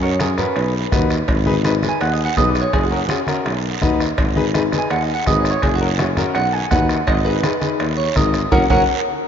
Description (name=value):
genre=latin, cumbia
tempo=166 BPM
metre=4/4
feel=straight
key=G# minor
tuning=A4 = 440 Hz
part: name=clean electric guitar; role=melody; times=0.0-8.8 s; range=F#4 to G#5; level=-22 LUFS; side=right 2 dB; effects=spring reverb, slapback echo
part: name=bright upright piano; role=accompaniment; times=0.0-8.8 s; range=C#4 to C#5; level=-22 LUFS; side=left 4 dB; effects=none
part: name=mellow tuba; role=bass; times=0.0-8.8 s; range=F#1 to F#2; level=-21 LUFS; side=equal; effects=none
part: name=bombo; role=percussion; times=0.2-8.8 s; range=none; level=-22 LUFS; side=equal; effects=none
part: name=congas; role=percussion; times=0.2-8.8 s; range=none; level=-28 LUFS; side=right 2 dB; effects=none
part: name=guiro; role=percussion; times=0.2-8.8 s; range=none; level=-31 LUFS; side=right 9 dB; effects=none
part: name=cowbell and timbales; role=percussion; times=0.6-8.8 s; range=none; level=-31 LUFS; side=right 6 dB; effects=none
room=moderate cathedral reverb, RT60 4.8 s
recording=in a vast, echoing space, nothing above 7.5 kHz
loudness=-15 LUFS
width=side -8 dB against mid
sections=0.0-9.3 A section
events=clean electric guitar solo 0.0-9.3; drum fill 8.5-9.3; band accent 8.5-9.3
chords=0.0 F#; 0.6 B; 1.3 G#m; 2.7 F#; 3.5 B; 4.2 G#m; 5.6 F#; 6.4 B; 7.1 G#m; 8.5 F#